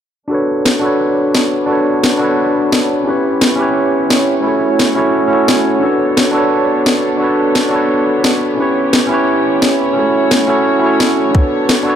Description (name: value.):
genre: liquid drum and bass.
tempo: 174 BPM.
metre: 4/4.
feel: straight.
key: B minor.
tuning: A4 = 440 Hz.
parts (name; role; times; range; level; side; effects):
overdriven tine electric piano; accompaniment; 0.3-12.0 s; C#4 to C#5; -13 LUFS; equal; low-pass filter, tape echo.
dark studio string section; sustained chords; 0.3-12.0 s; A3 to C#5; -20 LUFS; right 2 dB; low-pass filter.
electronic snare drum; drums; 0.7-11.8 s; none; -16 LUFS; left 1 dB; overdrive, small room reverb.
electronic kick drum; drums; 11.3-11.4 s; none; -11 LUFS; equal; overdrive, small room reverb.
room: moderate plate reverb, RT60 2.4 s.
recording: dark, warm production.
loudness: -11 LUFS.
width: side -9 dB against mid.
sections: 0.3-12.0 A section.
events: filter sweep on tine electric piano 0.3-12.0; filter sweep on string section 0.3-12.0.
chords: 0.3 Bm9; 3.1 C#m7b5; 4.5 F#m7; 5.8 Bm9; 8.6 C#m7b5; 10.0 F#m7; 11.3 Bm9.